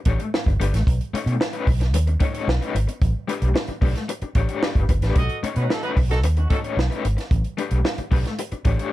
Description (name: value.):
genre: funk.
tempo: 112 BPM.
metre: 4/4.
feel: straight.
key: B mixolydian.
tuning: A4 = 439 Hz.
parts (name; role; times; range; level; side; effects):
raw garage guitar; accompaniment; 0.1-8.9 s; A3 to C#5; -28 LUFS; left 6 dB; overdrive, tremolo.
vintage muted fingered electric bass; bass; 0.1-8.8 s; G1 to B2; -21 LUFS; equal; none.
compact cocktail drum kit; drums; 0.1-8.9 s; hi-hat, kick drum, snare drum; -23 LUFS; equal; none.
warm horn section; second line; 5.2-6.6 s; C#4 to D#5; -29 LUFS; right 2 dB; plate reverb.
room: little or no reverb.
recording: dark, warm production.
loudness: -19 LUFS.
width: side -15 dB against mid.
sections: 0.0-8.9 A section.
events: none.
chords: 0.0 A9sus4; 0.9 B9; 3.0 A9sus4; 5.2 B9; 7.3 A9sus4.